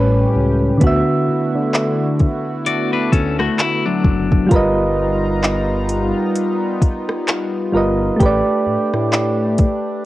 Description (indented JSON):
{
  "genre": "contemporary R&B",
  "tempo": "65 BPM",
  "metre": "4/4",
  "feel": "swing 58% on 16ths",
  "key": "D major",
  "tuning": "A4 = 440 Hz",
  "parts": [
    { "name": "soft electric-piano-like synth keys", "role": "accompaniment", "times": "0.0-10.1 s", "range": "A2 to E5", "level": "-18 LUFS", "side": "right 1 dB", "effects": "chorus, cassette tape" },
    { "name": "chorused pulse-width pad", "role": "sustained chords", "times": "0.0-10.1 s", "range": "D3 to A#5", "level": "-23 LUFS", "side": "left 1 dB", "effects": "cassette tape" },
    { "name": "smooth gliding synth bass", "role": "bass", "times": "0.0-9.7 s", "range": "F#1 to D3", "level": "-21 LUFS", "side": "equal", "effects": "none" },
    { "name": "smooth R&B drum kit", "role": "drums", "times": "0.8-9.8 s", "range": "handclaps, hi-hat, kick drum, rim click", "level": "-17 LUFS", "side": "equal", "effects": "overdrive, cassette tape" },
    { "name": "clean electric guitar", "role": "arpeggios", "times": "2.7-4.5 s", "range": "F#3 to D5", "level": "-19 LUFS", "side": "left 5 dB", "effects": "cassette tape" }
  ],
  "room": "light reverb, digital ambience",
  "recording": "home recording on cassette",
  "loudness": "-15 LUFS",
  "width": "side -16 dB against mid",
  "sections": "0.0-10.1 A section",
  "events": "none",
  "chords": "0.0 A9; 0.8 D69; 4.5 G7alt; 8.2 A9sus4"
}